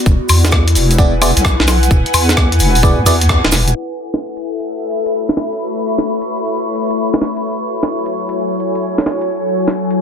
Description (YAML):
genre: UK garage, two-step garage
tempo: 130 BPM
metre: 4/4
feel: swing 66% on 16ths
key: unclear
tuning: A4 = 442 Hz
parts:
  - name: airy breathy pad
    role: texture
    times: 0.0-10.0 s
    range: B3 to C#6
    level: -19 LUFS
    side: left 2 dB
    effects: chorus, sidechain pumping
  - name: deep soft wobble bass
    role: bass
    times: 0.1-3.7 s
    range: D1 to E2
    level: -13 LUFS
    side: equal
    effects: chorus
  - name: electronic kick drum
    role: drums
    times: 0.1-3.4 s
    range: none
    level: -13 LUFS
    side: equal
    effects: overdrive, studio reverb
  - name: cabasa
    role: percussion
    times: 0.1-3.7 s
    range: none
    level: -23 LUFS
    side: right 8 dB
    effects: none
  - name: breakbeat sampler-style drum kit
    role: drums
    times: 0.3-10.0 s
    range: hi-hat, rim click, snare drum, woodblock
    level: -16 LUFS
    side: equal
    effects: studio reverb
  - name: FM electric piano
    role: stabs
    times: 1.0-3.2 s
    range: B3 to D5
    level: -17 LUFS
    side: right 1 dB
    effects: chorus, phaser, ping-pong delay
  - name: ethereal airy pad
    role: sustained chords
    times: 4.7-10.0 s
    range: F#3 to G#5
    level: -21 LUFS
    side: left 1 dB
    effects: ensemble chorus, built-in reverb, sidechain pumping
room: light reverb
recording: dense, heavily limited modern master, low-pass filter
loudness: -12 LUFS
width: side -7 dB against mid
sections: 0.0-3.8 A section; 3.8-10.0 B section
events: band accent 3.3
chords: 0.0 E9; 3.8 A69; 7.4 F#m9